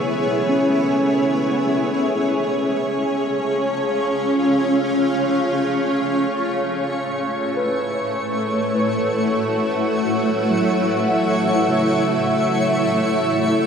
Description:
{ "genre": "ambient", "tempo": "51 BPM", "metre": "4/4", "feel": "straight", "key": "F# minor", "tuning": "A4 = 439 Hz", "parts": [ { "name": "granular cloud pad", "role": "sustained chords", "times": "0.0-13.7 s", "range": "A3 to E#5", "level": "-19 LUFS", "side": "equal", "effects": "built-in reverb, shimmer reverb" }, { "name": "muted felt-like synth keys", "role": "arpeggios", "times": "0.0-13.7 s", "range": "C#3 to F#5", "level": "-25 LUFS", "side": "equal", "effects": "chorus, tape echo" }, { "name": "overtone-sweeping drone", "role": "drone", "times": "0.0-13.7 s", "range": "A3", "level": "-33 LUFS", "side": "equal", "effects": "none" }, { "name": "twinkling granular texture", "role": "texture", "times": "6.9-13.7 s", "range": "C#5 to C#6", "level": "-28 LUFS", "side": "left 1 dB", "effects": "built-in reverb, shimmer reverb" } ], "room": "wet lush hall reverb, RT60 2.7 s", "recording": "dreamy mix soaked in reverb", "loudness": "-17 LUFS", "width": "side -7 dB against mid", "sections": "0.0-13.7 A section", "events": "none", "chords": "0.0 C#m7; 1.7 Amaj7#5; 6.4 F#m7" }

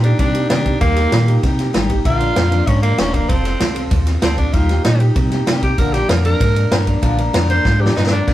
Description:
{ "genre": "rockabilly", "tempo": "193 BPM", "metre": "4/4", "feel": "straight", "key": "Bb major", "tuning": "A4 = 440 Hz", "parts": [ { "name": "raspy tenor saxophone", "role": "melody", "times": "0.0-8.3 s", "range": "Bb3 to C5", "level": "-20 LUFS", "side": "right 1 dB", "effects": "none" }, { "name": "picked steel-string acoustic guitar", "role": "accompaniment", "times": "0.0-8.3 s", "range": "Bb2 to Bb4", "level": "-22 LUFS", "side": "left 2 dB", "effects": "none" }, { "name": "sub bass with octave", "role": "bass", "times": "0.0-8.3 s", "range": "Eb1 to C3", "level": "-17 LUFS", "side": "equal", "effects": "none" }, { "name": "vintage drum kit", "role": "drums", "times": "0.0-8.3 s", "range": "crash cymbal, kick drum, ride cymbal, snare drum", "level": "-18 LUFS", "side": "equal", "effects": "none" } ], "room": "moderate studio ambience, RT60 0.5 s", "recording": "rough rehearsal-room recording", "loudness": "-13 LUFS", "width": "side -14 dB against mid", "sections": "0.0-8.3 A section", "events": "tenor saxophone solo 0.0-8.3; drum fill 7.7-8.3", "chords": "0.0 Eb; 2.1 Bb; 3.3 F; 4.5 Eb; 5.8 Bb" }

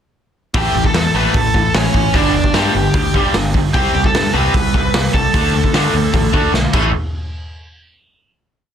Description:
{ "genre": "punk rock", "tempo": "150 BPM", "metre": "4/4", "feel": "straight", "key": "unclear", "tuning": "A4 = 441 Hz", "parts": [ { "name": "overdriven semi-hollow guitar", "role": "riff", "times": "0.5-6.9 s", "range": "G2 to D4", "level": "-21 LUFS", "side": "left 11 dB", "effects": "none" }, { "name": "tight distorted guitar", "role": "riff", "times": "0.5-6.9 s", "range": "G2 to D4", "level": "-20 LUFS", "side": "right 12 dB", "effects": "distortion" }, { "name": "growling picked electric bass", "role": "bass", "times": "0.5-6.9 s", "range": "G1 to D3", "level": "-20 LUFS", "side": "equal", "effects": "overdrive" }, { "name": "raw garage drum kit", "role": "drums", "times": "0.5-6.8 s", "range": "crash cymbal, hi-hat, kick drum, snare drum", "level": "-17 LUFS", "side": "equal", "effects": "none" }, { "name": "lead guitar through a small cranked amp", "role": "melody", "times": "0.6-6.5 s", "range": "C#4 to B5", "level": "-18 LUFS", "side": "equal", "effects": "overdrive" } ], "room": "little or no reverb", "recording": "dense, heavily limited modern master", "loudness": "-12 LUFS", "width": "side -9 dB against mid", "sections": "0.5-6.9 verse; 6.9-8.5 final hit", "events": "drum fill 6.5-6.9", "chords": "0.5 A; 2.1 G5; 3.7 C5; 5.3 D5; 6.7 A5; 6.9 N.C." }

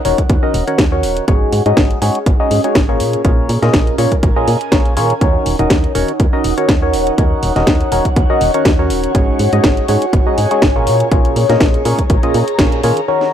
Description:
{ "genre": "piano house", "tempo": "122 BPM", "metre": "4/4", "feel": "swing 54% on 16ths", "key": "Eb minor", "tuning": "A4 = 440 Hz", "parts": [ { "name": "percussive organ stab", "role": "riff", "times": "0.0-13.3 s", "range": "Bb2 to Eb5", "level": "-16 LUFS", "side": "left 1 dB", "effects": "chorus, phaser, sidechain pumping, analog delay" }, { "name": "garage drum kit", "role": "drums", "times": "0.0-13.3 s", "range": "hi-hat, snare drum", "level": "-19 LUFS", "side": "equal", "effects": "none" }, { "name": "airy breathy pad", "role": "texture", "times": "0.0-13.3 s", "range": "Db4 to Bb5", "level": "-21 LUFS", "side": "equal", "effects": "chorus, phaser, sidechain pumping" }, { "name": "solid FM bass", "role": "bass", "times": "0.1-12.9 s", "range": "Eb1 to Bb2", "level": "-18 LUFS", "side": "equal", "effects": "sidechain pumping" }, { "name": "electronic kick drum", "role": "drums", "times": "0.2-12.7 s", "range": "none", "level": "-14 LUFS", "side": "equal", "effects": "none" } ], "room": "little or no reverb", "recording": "dry, gritty hardware recording", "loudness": "-11 LUFS", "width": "side -9 dB against mid", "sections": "0.0-13.1 A section", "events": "band accent 12.6", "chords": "0.0 Ebm7; 1.3 Ab7sus4; 3.0 Bbm7; 5.2 Ebm7; 9.1 Ab7sus4; 10.9 Bbm7" }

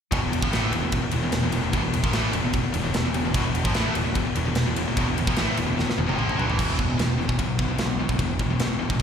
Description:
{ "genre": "heavy metal", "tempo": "149 BPM", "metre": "4/4", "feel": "straight", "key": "unclear", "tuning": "A4 = 440 Hz", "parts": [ { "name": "distorted electric guitar", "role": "riff", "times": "0.1-9.0 s", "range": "E2 to A#3", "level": "-29 LUFS", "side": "right 11 dB", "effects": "overdrive" }, { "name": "scooped high-gain guitar", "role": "riff", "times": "0.1-9.0 s", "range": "E2 to A#3", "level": "-27 LUFS", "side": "left 8 dB", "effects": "distortion, slapback echo" }, { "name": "growling picked electric bass", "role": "bass", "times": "0.1-9.0 s", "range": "E1 to B1", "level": "-27 LUFS", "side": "equal", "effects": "overdrive" }, { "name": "tight metal drum kit", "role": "drums", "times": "0.1-9.0 s", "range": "crash cymbal, kick drum, ride cymbal, snare drum, toms", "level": "-26 LUFS", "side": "equal", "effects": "none" } ], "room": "small room ambience", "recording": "live gig heard through the venue's PA, recital hall reverb", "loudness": "-21 LUFS", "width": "side -8 dB against mid", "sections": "0.1-6.6 A section; 6.6-9.0 B section", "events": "drum fill 5.8-6.6", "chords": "0.1 E5" }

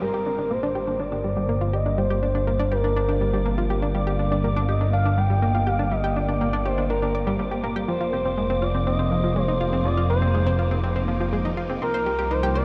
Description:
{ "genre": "ambient, sequencer-driven space music", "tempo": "122 BPM", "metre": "4/4", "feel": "straight", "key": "G phrygian", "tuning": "A4 = 440 Hz", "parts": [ { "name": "expressive synth lead", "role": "melody", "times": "0.0-12.6 s", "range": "Bb4 to G5", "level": "-29 LUFS", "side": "equal", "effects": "chorus, analog delay" }, { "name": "phased string machine", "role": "sustained chords", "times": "0.0-12.6 s", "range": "F3 to Bb4", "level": "-39 LUFS", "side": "equal", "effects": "ensemble chorus, phaser" }, { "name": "analog pluck", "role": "riff", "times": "0.0-12.6 s", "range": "F3 to D5", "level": "-30 LUFS", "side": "equal", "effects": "chorus, analog delay" }, { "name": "fat analog bass", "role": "bass", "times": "0.0-12.6 s", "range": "F1 to C2", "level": "-27 LUFS", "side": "equal", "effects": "none" }, { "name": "wind-like tuned noise texture", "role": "texture", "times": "0.0-12.6 s", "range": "Bb3 to D6", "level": "-35 LUFS", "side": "equal", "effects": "built-in reverb, lush chorus" } ], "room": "moderate huge ambient reverb, RT60 7.0 s", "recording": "dreamy mix soaked in reverb", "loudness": "-23 LUFS", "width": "mono", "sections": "0.0-12.6 A section", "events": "fade-in on string machine 0.0-12.6", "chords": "0.0 Gm; 7.9 Fm; 11.8 Cm" }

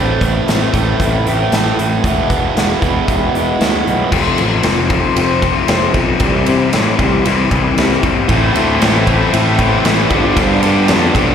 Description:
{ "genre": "quiet-loud alternative rock", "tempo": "115 BPM", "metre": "4/4", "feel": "straight", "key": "A minor", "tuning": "A4 = 440 Hz", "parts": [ { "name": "electric guitar through a small old amp", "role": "arpeggios", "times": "0.0-11.3 s", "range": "G2 to E4", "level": "-21 LUFS", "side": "equal", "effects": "lush chorus, slapback echo" }, { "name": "distorted electric guitar", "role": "riff", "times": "0.0-4.1, 8.3-11.3 s", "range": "E2 to A3", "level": "-18 LUFS", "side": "right 9 dB", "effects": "overdrive" }, { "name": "fuzz picked electric bass", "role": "bass", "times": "0.0-11.3 s", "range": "E1 to C3", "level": "-18 LUFS", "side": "equal", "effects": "overdrive" }, { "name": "big rock drum kit", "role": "drums", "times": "0.2-11.3 s", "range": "crash cymbal, hi-hat, kick drum, ride cymbal, snare drum", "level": "-18 LUFS", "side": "equal", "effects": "none" }, { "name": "thick fuzz guitar", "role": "riff", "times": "4.1-11.3 s", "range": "G2 to F4", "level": "-15 LUFS", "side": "left 8 dB", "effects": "distortion, slapback echo" }, { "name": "rich studio string section", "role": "sustained chords", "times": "8.3-11.3 s", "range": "G4 to C6", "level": "-25 LUFS", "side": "left 4 dB", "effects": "none" } ], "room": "little or no reverb", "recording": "live gig heard through the venue's PA, recital hall reverb", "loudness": "-11 LUFS", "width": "side -8 dB against mid", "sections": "0.0-4.1 A section; 4.1-11.3 B section", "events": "none", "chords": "0.0 Am; 2.0 E; 4.1 F; 6.2 C; 8.3 Amadd9; 10.1 G7sus4" }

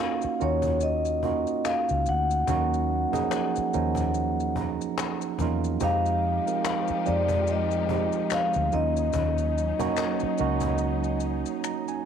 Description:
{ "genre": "R&B, neo-soul", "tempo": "72 BPM", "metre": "4/4", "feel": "swing 56% on 16ths", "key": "Eb dorian", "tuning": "A4 = 441 Hz", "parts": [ { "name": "vibraphone with soft mallets", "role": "melody", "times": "0.0-11.2 s", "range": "Db5 to Gb5", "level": "-28 LUFS", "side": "left 2 dB", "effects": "none" }, { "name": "mellow tine electric piano", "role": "accompaniment", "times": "0.0-12.1 s", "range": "F3 to Bb5", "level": "-28 LUFS", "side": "right 12 dB", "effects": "overdrive" }, { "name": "vintage muted fingered electric bass", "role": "bass", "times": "0.2-11.4 s", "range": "Db2 to F2", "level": "-29 LUFS", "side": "left 2 dB", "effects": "none" }, { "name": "cajon", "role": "drums", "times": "0.2-11.8 s", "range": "none", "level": "-35 LUFS", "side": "left 8 dB", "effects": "none" }, { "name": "maracas and finger snaps", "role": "percussion", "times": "0.2-12.0 s", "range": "none", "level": "-38 LUFS", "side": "left 17 dB", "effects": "none" }, { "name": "warm studio string section", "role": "sustained chords", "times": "5.8-12.1 s", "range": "F3 to G4", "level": "-35 LUFS", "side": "left 14 dB", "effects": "none" } ], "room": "light reverb, small room ambience", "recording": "1960s-style stereo with parts hard left and right", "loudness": "-24 LUFS", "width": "side -8 dB against mid", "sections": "0.0-12.1 A section", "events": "tine electric piano fill 4.1-5.8, 11.2-12.1; drum fill 10.8-12.1", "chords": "0.0 Ebm9; 5.8 Fm9; 8.7 Ebm9" }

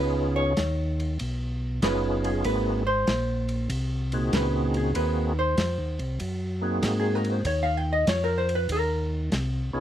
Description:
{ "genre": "soul jazz organ trio", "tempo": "96 BPM", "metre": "4/4", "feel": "swing 67% on 8ths", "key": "Ab mixolydian", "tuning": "A4 = 440 Hz", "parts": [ { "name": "overdriven tonewheel organ", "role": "melody", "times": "0.0-9.8 s", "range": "Bb2 to Ab4", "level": "-27 LUFS", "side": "equal", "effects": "slow rotary speaker, chorus vibrato" }, { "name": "vintage hollow-body jazz guitar", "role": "accompaniment", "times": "0.0-9.3 s", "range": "Ab4 to G5", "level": "-28 LUFS", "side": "equal", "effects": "none" }, { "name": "tonewheel organ", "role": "bass", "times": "0.0-9.8 s", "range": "Gb1 to Ab2", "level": "-27 LUFS", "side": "equal", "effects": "chorus vibrato, slow rotary speaker" }, { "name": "warm soul drum kit", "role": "drums", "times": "0.6-9.5 s", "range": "hi-hat, kick drum, ride cymbal, snare drum", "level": "-33 LUFS", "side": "equal", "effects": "none" } ], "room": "light reverb", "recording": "close, detailed microphones", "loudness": "-24 LUFS", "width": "side -11 dB against mid", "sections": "0.0-9.8 A section", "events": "hollow-body jazz guitar solo 0.0-9.8", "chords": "0.0 Db9; 2.5 Ab9; 7.5 Ebsus2" }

